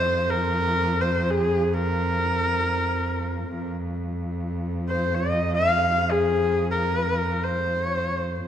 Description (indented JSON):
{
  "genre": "mongolian traditional, Mongolian folk",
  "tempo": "free time",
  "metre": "none",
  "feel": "none",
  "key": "F yu mode",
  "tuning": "A4 = 439 Hz",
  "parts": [
    { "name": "bright horsehead fiddle", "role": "melody", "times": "0.0-8.5 s", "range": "Ab4 to F5", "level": "-23 LUFS", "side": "left 1 dB", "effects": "none" },
    { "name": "warm cello", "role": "drone", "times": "0.0-8.5 s", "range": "F2", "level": "-26 LUFS", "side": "equal", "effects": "none" }
  ],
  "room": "wet recital hall reverb, RT60 1.4 s",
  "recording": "dark, warm production",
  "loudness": "-22 LUFS",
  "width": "side -9 dB against mid",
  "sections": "0.0-8.5 A section",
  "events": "none",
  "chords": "none"
}